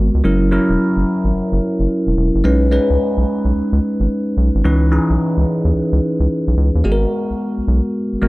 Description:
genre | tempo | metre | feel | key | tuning
R&B, new jack swing | 109 BPM | 4/4 | swing 64% on 16ths | G# minor | A4 = 442 Hz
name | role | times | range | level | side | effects
bell-like tine electric piano | accompaniment | 0.0-8.3 s | E3 to B4 | -17 LUFS | equal | phaser
round analog bass | bass | 0.0-8.3 s | E1 to D#2 | -16 LUFS | equal | none
room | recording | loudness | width
light reverb, digital ambience | dark, warm production | -14 LUFS | side -20 dB against mid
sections
0.0-6.8 A section; 6.8-8.3 B section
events
none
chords
0.2 F#7; 2.4 B69; 4.6 C#m9; 6.8 G#m9

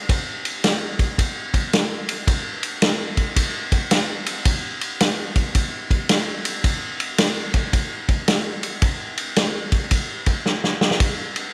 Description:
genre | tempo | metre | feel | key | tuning
rock | 110 BPM | 4/4 | swing 65% on 8ths | none | none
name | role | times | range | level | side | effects
vintage drum kit | drums | 0.1-11.4 s | kick drum, ride cymbal, snare drum | -22 LUFS | equal | none
room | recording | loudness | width
moderate plate reverb, RT60 2.0 s | none | -22 LUFS | mono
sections
0.0-11.5 A section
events
drum fill 10.5-11.0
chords
none

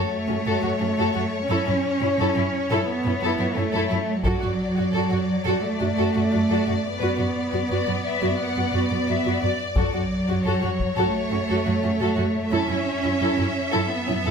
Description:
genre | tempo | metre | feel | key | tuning
cinematic, epic orchestral film score | 87 BPM | 4/4 | straight | F# minor | A4 = 441 Hz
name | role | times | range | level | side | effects
clear studio violin section | melody | 0.0-14.3 s | C#5 to E5 | -30 LUFS | left 5 dB | none
rich symphonic violin section | second line | 0.0-14.3 s | C#4 to F#5 | -29 LUFS | left 4 dB | none
dark symphonic viola section | accompaniment | 0.0-14.3 s | E4 to F#4 | -29 LUFS | right 2 dB | none
warm symphonic cello section | bass | 0.0-14.3 s | F#3 to C#4 | -25 LUFS | right 2 dB | none
warm studio double bass section | bass | 0.3-14.3 s | F#2 | -28 LUFS | right 2 dB | none
taiko ensemble | drums | 4.2-5.6, 9.8-11.1 s | none | -28 LUFS | left 1 dB | none
room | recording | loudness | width
moderate recital hall reverb, RT60 1.6 s | none | -21 LUFS | side -6 dB against mid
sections
0.0-14.3 A section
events
none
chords
0.0 F#m; 1.5 A/F#; 4.2 D/F#; 7.0 Bm/F#; 9.8 F#m; 12.5 A/F#

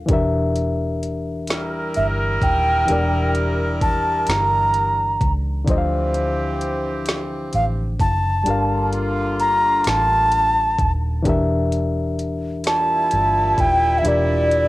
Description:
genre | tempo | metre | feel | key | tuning
slow six-eight R&B | 43 BPM (dotted quarters) | 6/8 | straight | unclear | A4 = 440 Hz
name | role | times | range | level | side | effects
reed electric piano | accompaniment | 0.0-14.7 s | D3 to F5 | -25 LUFS | left 2 dB | cassette tape
vintage muted fingered electric bass | bass | 0.0-14.7 s | Eb1 to D2 | -23 LUFS | equal | none
smooth R&B drum kit | drums | 0.1-14.7 s | hi-hat, kick drum, snare drum | -23 LUFS | equal | cassette tape
clear horn section | stabs | 1.5-14.7 s | Bb2 to Bb4 | -26 LUFS | right 1 dB | cassette tape
breathy bright alto ocarina | melody | 2.0-14.7 s | D5 to Bb5 | -18 LUFS | equal | cassette tape
room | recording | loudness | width
moderate studio reverb, RT60 0.5 s | home recording on cassette | -17 LUFS | side -18 dB against mid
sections
0.0-14.7 A section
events
none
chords
0.1 Em7b5; 5.7 Dm9; 8.5 Gm9; 11.3 Em7b5

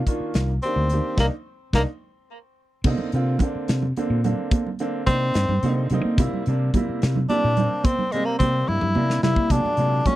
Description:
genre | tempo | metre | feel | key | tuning
electric jazz fusion | 72 BPM (dotted quarters) | 6/8 | straight | unclear | A4 = 440 Hz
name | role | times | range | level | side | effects
clear grand piano | accompaniment | 0.1-10.2 s | Bb2 to G4 | -28 LUFS | right 2 dB | none
modern studio drum kit | drums | 0.1-10.2 s | crash cymbal, hi-hat, kick drum, snare drum, toms | -23 LUFS | equal | none
fingered electric bass | bass | 0.2-10.0 s | C2 to Bb3 | -23 LUFS | equal | none
bright tenor saxophone | melody | 0.6-1.8, 5.1-10.2 s | Ab3 to E4 | -24 LUFS | left 1 dB | none
congas | percussion | 2.8-10.2 s | none | -27 LUFS | right 5 dB | none
room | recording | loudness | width
little or no reverb | dry, close 1970s-style studio recording | -20 LUFS | side -15 dB against mid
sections
0.0-2.9 A section; 2.9-10.2 A section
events
band accent 1.2-2.9; drum fill 2.0-2.9, 8.7-9.5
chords
0.0 Ebmaj7/C; 2.9 Cm9; 6.2 C7; 9.5 Bb7b13

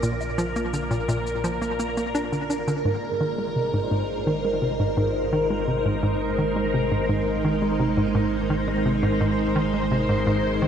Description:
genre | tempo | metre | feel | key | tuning
ambient, sequencer-driven space music | 85 BPM | 4/4 | straight | Ab lydian | A4 = 440 Hz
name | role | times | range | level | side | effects
string machine, full ensemble | sustained chords | 0.0-10.7 s | Ab3 to D5 | -24 LUFS | right 1 dB | phaser, ensemble chorus
hollow square pluck | riff | 0.0-10.7 s | Ab2 to D4 | -25 LUFS | equal | chorus, tape echo
warm sub bass | bass | 0.0-10.7 s | Ab1 to Bb1 | -34 LUFS | equal | tube saturation
shaker and woodblock | percussion | 0.0-2.8 s | none | -40 LUFS | left 4 dB | tape echo
room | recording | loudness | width
wet cathedral reverb, RT60 5.6 s | in a vast, echoing space, cassette tape | -21 LUFS | side -8 dB against mid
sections
0.0-2.9 A section; 2.9-10.7 B section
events
none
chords
0.0 Bb; 2.9 Ab

